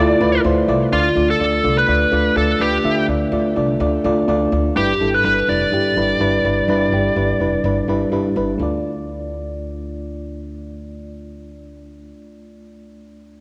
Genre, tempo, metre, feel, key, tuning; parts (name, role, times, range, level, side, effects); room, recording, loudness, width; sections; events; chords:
1980s-style pop; 125 BPM; 4/4; swing 55% on 16ths; D dorian; A4 = 439 Hz
smooth overdriven lead guitar; melody; 0.0-8.1 s; F4 to D5; -21 LUFS; equal; cassette tape, tape echo
FM electric piano; accompaniment; 0.0-13.4 s; D2 to E5; -22 LUFS; equal; cassette tape
upright bass; bass; 0.0-12.1 s; F1 to D2; -27 LUFS; equal
moderate lush hall reverb, RT60 2.5 s; home recording on cassette; -18 LUFS; mono
0.9-8.6 A section; 8.6-12.4 B section
0.0 Dmadd9; 4.8 G6; 8.6 Dm